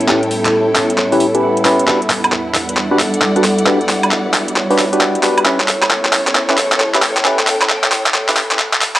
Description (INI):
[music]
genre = UK garage, two-step garage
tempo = 134 BPM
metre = 4/4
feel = swing 64% on 16ths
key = unclear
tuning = A4 = 440 Hz
[part]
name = concert harp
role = melody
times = 0.0-9.0 s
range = F#4 to F#5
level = -22 LUFS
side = equal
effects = cassette tape
[part]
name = airy breathy pad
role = sustained chords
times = 0.0-9.0 s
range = E2 to F#5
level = -25 LUFS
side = equal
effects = chorus, cassette tape
[part]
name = garage drum kit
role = drums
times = 0.0-9.0 s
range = handclaps, hi-hat, woodblock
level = -15 LUFS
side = equal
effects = studio reverb, cassette tape
[part]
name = warm symphonic string section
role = texture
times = 0.0-9.0 s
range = G3 to G5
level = -20 LUFS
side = equal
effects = cassette tape
[part]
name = percussive organ stab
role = stabs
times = 0.1-8.6 s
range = C#4 to B4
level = -17 LUFS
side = equal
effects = chorus, phaser, cassette tape
[sound]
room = moderate spring reverb, RT60 1.7 s, digital ambience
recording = home recording on cassette, high-pass filter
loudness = -12 LUFS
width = side -15 dB against mid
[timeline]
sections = 0.0-9.0 A section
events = build-up 0.0-9.0; drum fill 0.0-9.0; filter sweep on synth stab 0.0-9.0; filter sweep on analog synth pad 0.0-9.0; filter sweep 0.0-9.0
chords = 0.0 A7; 1.9 Em9; 5.5 A7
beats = | 0.08 0.53 0.98 1.43 | 1.88 2.32 2.77 3.22 | 3.67 4.11 4.56 5.01 | 5.46 5.91 6.35 6.80 | 7.25 7.70 8.14 8.59